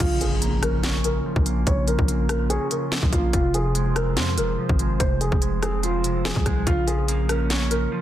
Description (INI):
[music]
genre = hip hop, drill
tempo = 144 BPM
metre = 4/4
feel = half-time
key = Bb minor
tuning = A4 = 440 Hz
[part]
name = dark upright piano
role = melody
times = 0.0-8.0 s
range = F4 to Db5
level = -27 LUFS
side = equal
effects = low-pass filter, ping-pong delay
[part]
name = clean electric guitar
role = accompaniment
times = 0.0-8.0 s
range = C3 to Db5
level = -28 LUFS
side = right 3 dB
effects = lush chorus, low-pass filter
[part]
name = warbly tape-like pad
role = sustained chords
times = 0.0-8.0 s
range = F3 to C5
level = -32 LUFS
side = right 1 dB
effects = chorus, built-in reverb
[part]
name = growling 808-style bass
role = bass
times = 0.0-7.9 s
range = F1 to F2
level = -25 LUFS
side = equal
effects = none
[part]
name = drill drum kit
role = drums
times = 0.0-7.8 s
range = crash cymbal, hi-hat, kick drum, rim click, snare drum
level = -24 LUFS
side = equal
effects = none
[part]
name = impact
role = sound effects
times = 0.0-1.7 s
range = none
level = -33 LUFS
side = equal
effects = none
[sound]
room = little or no reverb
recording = dense, heavily limited modern master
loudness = -20 LUFS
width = side -12 dB against mid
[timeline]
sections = 0.0-8.0 A section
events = impact 0.0-1.7; filter sweep 0.0-6.7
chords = 0.0 Bbm; 3.3 Fm; 6.7 Bbm